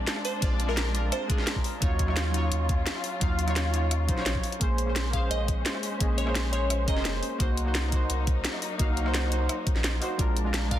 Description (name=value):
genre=liquid drum and bass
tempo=172 BPM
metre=4/4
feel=straight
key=Bb minor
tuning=A4 = 440 Hz
part: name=deep mellow chord stab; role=accompaniment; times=0.0-10.8 s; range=Gb3 to F5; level=-32 LUFS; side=right 1 dB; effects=chorus, tape echo
part: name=muted studio string section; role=sustained chords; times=0.0-10.8 s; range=Gb3 to C5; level=-35 LUFS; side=left 2 dB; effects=none
part: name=warm sub bass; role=bass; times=0.0-10.8 s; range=F1 to Eb2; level=-28 LUFS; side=equal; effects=none
part: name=drum and bass drum kit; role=drums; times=0.1-10.8 s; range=hi-hat, rim click, snare drum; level=-32 LUFS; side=equal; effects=none
part: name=glassy wavetable pluck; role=melody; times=0.2-1.5, 5.1-7.2, 10.7-10.8 s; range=Bb4 to F5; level=-35 LUFS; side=equal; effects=chorus, digital delay
part: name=electronic kick drum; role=drums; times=0.4-10.8 s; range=none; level=-28 LUFS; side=equal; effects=none
room=light reverb, digital ambience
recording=dense, heavily limited modern master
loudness=-24 LUFS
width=side -12 dB against mid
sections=0.0-4.6 A section; 4.6-10.8 A section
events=drop 0.0-4.6, 4.6-10.8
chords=0.0 Bb7; 1.8 Ebm9; 4.6 Bbm9; 7.4 Cm7b5; 10.2 Bb7